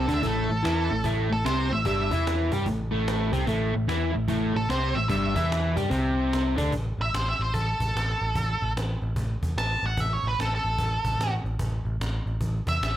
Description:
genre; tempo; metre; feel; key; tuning
blues rock power trio and southern rock; 148 BPM; 4/4; swing 65% on 8ths; unclear; A4 = 440 Hz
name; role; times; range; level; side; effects
octave-fuzz lead guitar; melody; 0.0-13.0 s; A4 to A5; -28 LUFS; right 1 dB; distortion, slapback echo
crunchy overdriven guitar; riff; 0.0-6.7 s; G2 to G4; -26 LUFS; equal; none
overdriven picked electric bass; bass; 0.0-13.0 s; G1 to G2; -28 LUFS; equal; none
cajon; drums; 0.1-12.9 s; none; -34 LUFS; equal; none
room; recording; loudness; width
light reverb; none; -24 LUFS; side -12 dB against mid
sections
0.0-6.7 A section; 6.7-13.0 B section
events
lead electric guitar solo 6.7-13.0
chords
0.0 A5

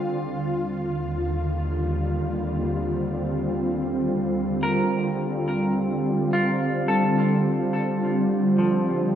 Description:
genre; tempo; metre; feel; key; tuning
ambient; 53 BPM; 4/4; straight; unclear; A4 = 441 Hz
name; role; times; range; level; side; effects
ethereal airy pad; sustained chords; 0.0-9.2 s; Eb2 to F4; -22 LUFS; equal; ensemble chorus, built-in reverb
semi-hollow electric guitar; arpeggios; 4.6-9.2 s; F3 to Bb4; -27 LUFS; equal; lush chorus, tape echo
room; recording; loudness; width
wet concert hall reverb, RT60 2.5 s; dark, warm production; -22 LUFS; side -10 dB against mid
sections
0.0-4.6 A section; 4.6-9.2 B section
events
none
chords
0.1 Eb6; 4.6 Gm9

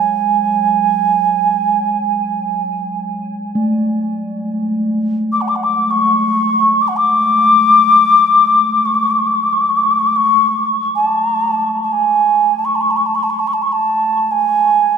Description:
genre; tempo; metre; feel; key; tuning
world meditative, free-time meditation music; free time; none; none; unclear; A4 = 438 Hz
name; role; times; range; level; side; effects
mellow alto ocarina; melody; 0.0-15.0 s; F#5 to D6; -12 LUFS; equal; dub echo
bronze singing bowl; texture; 0.0-11.4 s; F#3 to A3; -22 LUFS; equal; stereo widening
room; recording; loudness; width
wet spring reverb, RT60 1.3 s, small room ambience; echo-heavy mix; -12 LUFS; side -6 dB against mid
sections
0.0-15.0 A section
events
none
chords
none

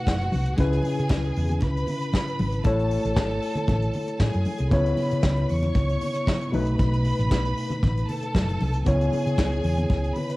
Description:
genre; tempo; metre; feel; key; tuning
disco; 116 BPM; 4/4; straight; C# minor; A4 = 442 Hz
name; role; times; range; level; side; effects
rich studio violin section; second line; 0.0-10.4 s; F#4 to C#6; -32 LUFS; right 1 dB; none
tine electric piano; accompaniment; 0.0-10.4 s; B2 to C#5; -27 LUFS; left 1 dB; medium stereo tremolo
hollow-body short-scale fingered electric bass; bass; 0.1-10.1 s; F#1 to C#3; -25 LUFS; equal; none
soft brush drum kit; drums; 0.1-10.4 s; hi-hat, kick drum, snare drum; -26 LUFS; equal; none
congas; percussion; 0.1-10.3 s; none; -33 LUFS; left 1 dB; none
room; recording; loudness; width
studio ambience; home recording on cassette, lossy compression artefacts; -21 LUFS; side -20 dB against mid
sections
0.0-10.4 A section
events
none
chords
0.0 B7; 0.6 C#m7; 2.6 Amaj7; 4.7 C#m7; 6.5 B7; 8.9 C#m7

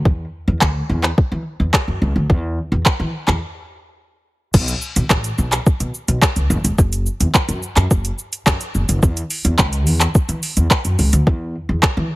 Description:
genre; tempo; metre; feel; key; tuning
dance-pop; 107 BPM; 4/4; straight; unclear; A4 = 439 Hz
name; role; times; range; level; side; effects
upright bass; bass; 0.1-12.1 s; E1 to E3; -18 LUFS; equal; sidechain pumping
smooth R&B drum kit; drums; 0.1-12.0 s; crash cymbal, handclaps, hi-hat, kick drum, shaker; -16 LUFS; equal; overdrive
room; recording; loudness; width
little or no reverb; heavily compressed radio sound; -15 LUFS; side -19 dB against mid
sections
0.0-4.5 A section; 4.5-12.2 B section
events
break 3.4-4.5, 11.3-12.2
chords
none

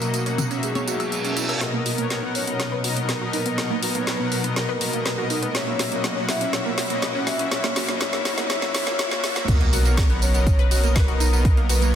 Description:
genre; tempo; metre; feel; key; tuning
progressive house; 122 BPM; 4/4; straight; B major; A4 = 440 Hz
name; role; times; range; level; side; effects
soft octave-layered synth lead; melody; 0.0-12.0 s; G#4 to E5; -29 LUFS; left 1 dB; chorus, tremolo, tape echo
muted studio string section; sustained chords; 0.0-12.0 s; A#2 to E4; -31 LUFS; equal; sidechain pumping
analog pluck; arpeggios; 0.0-11.9 s; A#3 to C#5; -30 LUFS; right 2 dB; chorus, sidechain pumping, tape echo
soft supersaw; stabs; 0.0-12.0 s; A#2 to F#5; -28 LUFS; left 2 dB; sidechain pumping, tape echo
deep house drum kit; drums; 0.0-11.9 s; crash cymbal, hi-hat, snare drum, tambourine; -27 LUFS; equal; sidechain pumping on hats, sidechain pumping on perc, sidechain pumping on cymbals
electronic toms, congas and woodblock; percussion; 0.4-1.6 s; none; -30 LUFS; left 2 dB; sidechain pumping on perc, sidechain pumping on toms
reverse cymbal, riser and sub drop; sound effects; 0.8-11.4 s; none; -32 LUFS; right 1 dB; none
round analog bass; bass; 9.5-12.0 s; B1; -20 LUFS; equal; tube saturation, sidechain pumping
electronic kick drum; drums; 9.5-11.5 s; none; -19 LUFS; equal; none
room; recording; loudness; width
moderate lush hall reverb, RT60 2.0 s; dense, heavily limited modern master, high-pass filter; -20 LUFS; side -9 dB against mid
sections
0.0-1.6 A section; 1.6-9.5 B section; 9.5-12.0 C section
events
reverse cymbal 0.8-1.6; build-up 1.6-9.5; drum fill 1.6-9.5; filter sweep on synth pluck 1.6-9.5; drop 9.5-12.0; impact 9.5-11.4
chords
0.0 F#7/B; 1.6 Bmaj7; 5.5 F#7; 9.5 Bmaj7

